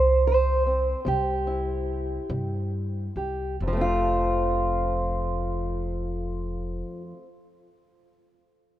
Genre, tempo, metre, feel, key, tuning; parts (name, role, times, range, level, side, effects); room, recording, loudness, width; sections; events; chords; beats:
acoustic country blues, solo or duo; 45-51 BPM (dotted quarters); 12/8; straight; F major; A4 = 439 Hz
fingerpicked steel-string acoustic guitar; melody; 0.0-7.3 s; F2 to C5; -25 LUFS; right 1 dB
upright bass; bass; 0.0-6.8 s; F1 to G2; -28 LUFS; equal
moderate huge ambient reverb, RT60 4.2 s; minimal, uncompressed stereo recording; -24 LUFS; side -13 dB against mid
0.0-3.6 A section; 3.6-8.8 B section
slowing down 0.0-3.6
0.0 F5; 1.1 C; 3.6 F
1.05 2.30 | 3.60 4.95 6.29